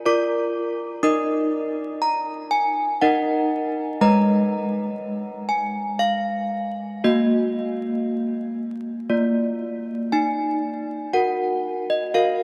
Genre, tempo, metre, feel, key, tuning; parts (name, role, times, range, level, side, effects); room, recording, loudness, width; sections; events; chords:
classical, tune for handbells; 60 BPM; 3/4; straight; Eb minor; A4 = 440 Hz
desk bells; solo; 0.0-12.4 s; Ab3 to Eb6; -23 LUFS; equal
wet cathedral reverb, RT60 6.2 s; dark, warm production, vinyl crackle; -23 LUFS; mono
0.0-10.1 A section; 10.1-12.4 B section
0.0 Bb/F; 1.0 Ebm; 4.0 Abm; 7.0 Ebm/Bb; 9.1 Bb; 10.1 Ebm